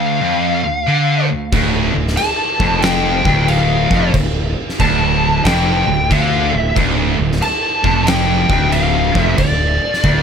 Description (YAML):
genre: stoner and doom metal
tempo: 92 BPM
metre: 4/4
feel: swing 65% on 8ths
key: D minor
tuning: A4 = 439 Hz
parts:
  - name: fuzz lead guitar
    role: melody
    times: 0.0-10.2 s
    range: D5 to A5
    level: -18 LUFS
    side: left 2 dB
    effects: distortion, tape echo
  - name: high-gain distorted guitar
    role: riff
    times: 0.0-10.2 s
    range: D2 to D3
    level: -20 LUFS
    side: equal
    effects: distortion
  - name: thick fuzz guitar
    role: riff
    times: 0.0-10.2 s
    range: D2 to D3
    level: -22 LUFS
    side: left 8 dB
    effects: distortion
  - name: thick fuzz guitar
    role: riff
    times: 0.0-10.2 s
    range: D2 to D3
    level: -21 LUFS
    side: right 8 dB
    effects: distortion
  - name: fuzz fingered electric bass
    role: bass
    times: 1.5-10.2 s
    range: D1 to D2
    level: -19 LUFS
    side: equal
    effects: overdrive
  - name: oversized low-tuned drum kit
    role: drums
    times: 1.5-10.2 s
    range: crash cymbal, kick drum, snare drum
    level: -19 LUFS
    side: equal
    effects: none
room: small room ambience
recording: none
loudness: -13 LUFS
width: side -7 dB against mid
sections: 0.0-10.2 A section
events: none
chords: 0.0 Dm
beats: 0.21 0.87 | 1.53 2.18 2.84 3.49 | 4.15 4.80 5.46 6.11 | 6.77 7.42 8.08 8.73 | 9.39 10.04